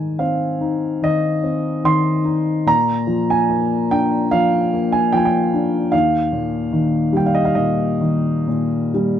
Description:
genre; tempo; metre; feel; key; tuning
classical, lyrical solo piano; 64-76 BPM; 4/4; rubato; Eb major; A4 = 440 Hz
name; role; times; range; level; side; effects
dark upright piano; solo; 0.0-9.2 s; Eb2 to C6; -16 LUFS; equal; none
room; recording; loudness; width
light reverb; dark, warm production; -16 LUFS; side -9 dB against mid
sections
0.0-9.2 A section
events
none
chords
0.0 Ab; 2.7 Bb; 5.9 Eb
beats
0.19 1.03 1.84 | 2.66 3.50 4.32 5.13 | 5.93 6.71 7.56 8.48

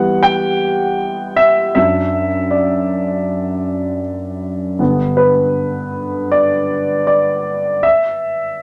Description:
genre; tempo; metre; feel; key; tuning
pop; 79 BPM; 4/4; straight; G major; A4 = 441 Hz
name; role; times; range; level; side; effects
dark baby grand piano; solo; 0.0-8.6 s; F#2 to G5; -16 LUFS; equal; none
room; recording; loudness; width
moderate studio reverb, RT60 0.6 s; none; -16 LUFS; mono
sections
0.0-8.6 A section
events
grand piano solo 0.0-8.6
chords
0.0 Emadd9; 1.8 Dadd9/F#; 4.8 G; 7.8 N.C.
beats
0.24 1.00 | 1.76 2.52 3.28 4.04 | 4.80 5.56 6.32 7.08 | 7.84 8.60

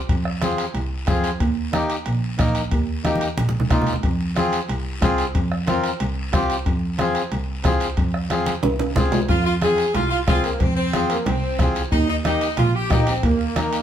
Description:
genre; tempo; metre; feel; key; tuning
latin, cumbia; 183 BPM; 4/4; straight; F minor; A4 = 440 Hz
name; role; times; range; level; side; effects
bright double bass; bass; 0.0-13.8 s; Bb1 to F2; -24 LUFS; right 1 dB; none
bombo; percussion; 0.1-13.7 s; none; -23 LUFS; equal; none
congas; percussion; 0.1-13.7 s; none; -27 LUFS; equal; none
guiro; percussion; 0.1-13.8 s; none; -35 LUFS; left 4 dB; none
timbales; percussion; 0.1-13.8 s; none; -30 LUFS; right 2 dB; none
accordion; accompaniment; 0.4-13.8 s; Bb3 to Bb4; -24 LUFS; left 2 dB; none
clear saxophone section; melody; 9.3-13.8 s; Bb3 to Ab4; -23 LUFS; equal; none
room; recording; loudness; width
wet studio reverb, RT60 0.7 s; heard from further back in the room; -18 LUFS; side -10 dB against mid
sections
0.0-9.3 A section; 9.3-13.8 B section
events
drum fill 3.0-4.0, 8.5-9.3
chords
0.0 Fm; 1.4 Eb; 4.0 Fm; 11.9 Eb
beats
| 0.09 0.42 0.75 1.07 | 1.40 1.73 2.06 2.39 | 2.72 3.05 3.38 3.71 | 4.03 4.36 4.69 5.02 | 5.35 5.68 6.00 6.33 | 6.66 6.99 7.32 7.65 | 7.98 8.30 8.63 8.96 | 9.29 9.62 9.95 10.28 | 10.61 10.93 11.26 11.59 | 11.92 12.25 12.58 12.90 | 13.23 13.56

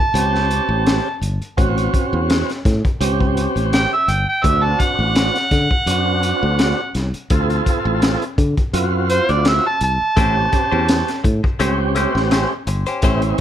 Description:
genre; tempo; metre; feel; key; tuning
straight-eighth soul blues; 84 BPM; 4/4; swing 55% on 16ths; unclear; A4 = 435 Hz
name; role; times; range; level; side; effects
overdriven harmonica; melody; 0.0-11.2 s; C5 to A5; -18 LUFS; right 2 dB; plate reverb
tonewheel organ; accompaniment; 0.1-13.4 s; B#3 to A4; -21 LUFS; right 3 dB; slow rotary speaker, overdrive
fingered electric bass; bass; 0.1-13.3 s; G1 to D3; -20 LUFS; equal; none
crunchy breakbeat drum kit; drums; 0.2-13.4 s; hi-hat, kick drum, snare drum; -19 LUFS; left 1 dB; none
direct-recorded clean electric guitar; stabs; 10.2-13.4 s; A3 to B#4; -23 LUFS; left 4 dB; phaser, digital delay
room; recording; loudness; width
light reverb; none; -15 LUFS; side -10 dB against mid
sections
0.0-13.4 A section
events
harmonica solo 0.0-13.4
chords
0.0 A7#9; 4.4 D7#9; 10.2 A7#9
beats
0.14 0.86 | 1.58 2.29 3.01 3.72 | 4.44 5.16 5.87 6.59 | 7.31 8.02 8.74 9.46 | 10.17 10.89 11.60 12.32 | 13.04

